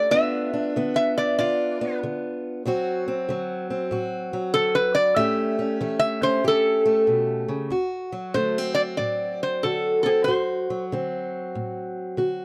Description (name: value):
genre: acoustic country blues, solo or duo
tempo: 94 BPM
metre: 4/4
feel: swing 65% on 8ths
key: D mixolydian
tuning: A4 = 440 Hz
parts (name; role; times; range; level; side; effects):
- metal-body resonator slide guitar; melody; 0.0-10.8 s; G#4 to E5; -24 LUFS; equal; none
- fingerpicked acoustic archtop guitar; accompaniment; 0.0-12.4 s; D2 to G4; -28 LUFS; equal; none
room: little or no reverb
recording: dry, close 1970s-style studio recording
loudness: -24 LUFS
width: mono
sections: 0.0-7.7 A section; 7.7-12.4 B section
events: resonator guitar played with a steel bar solo 0.0-7.7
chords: 0.1 G7; 2.6 D7; 5.2 A7; 7.7 D7